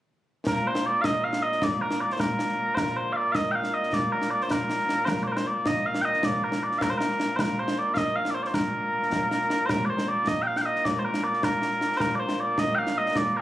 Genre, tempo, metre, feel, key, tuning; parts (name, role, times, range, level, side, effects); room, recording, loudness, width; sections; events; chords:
scottish traditional, Scottish pipe music; 104 BPM (dotted quarters); 6/8; straight; Bb major; A4 = 441 Hz
mellow small bagpipes; melody; 0.5-13.4 s; Bb2 to G5; -25 LUFS; equal
concert snare drum and concert bass drum; drums; 0.5-13.2 s; -29 LUFS; equal
light reverb; recorded on a phone in the room, club reverb, compression; -23 LUFS; side -14 dB against mid
0.5-9.7 A section; 9.7-13.4 A section